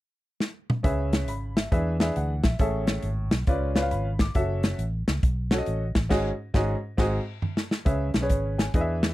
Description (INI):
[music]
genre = uptempo gospel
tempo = 137 BPM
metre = 4/4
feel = swing 65% on 8ths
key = C# minor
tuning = A4 = 439 Hz
[part]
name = natural country drum kit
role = drums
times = 0.4-9.1 s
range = crash cymbal, hi-hat, kick drum, snare drum, toms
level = -24 LUFS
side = equal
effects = none
[part]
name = clear baby grand piano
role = accompaniment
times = 0.8-9.1 s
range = G#2 to D6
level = -28 LUFS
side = equal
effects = none
[part]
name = vintage muted fingered electric bass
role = bass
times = 0.8-9.1 s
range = F#1 to E2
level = -28 LUFS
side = equal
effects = none
[sound]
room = little or no reverb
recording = dry, close 1970s-style studio recording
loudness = -23 LUFS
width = side -17 dB against mid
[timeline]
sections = 0.8-7.9 A section; 7.9-9.1 B section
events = drum fill 0.4-0.8, 7.0-7.9; band accent 6.1-7.9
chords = 0.0 N.C.; 0.8 C#m7; 1.7 E7; 2.6 Amaj7; 3.5 C#7b9; 4.3 F#m7; 6.1 G#7sus4; 7.0 G#7; 7.9 C#m7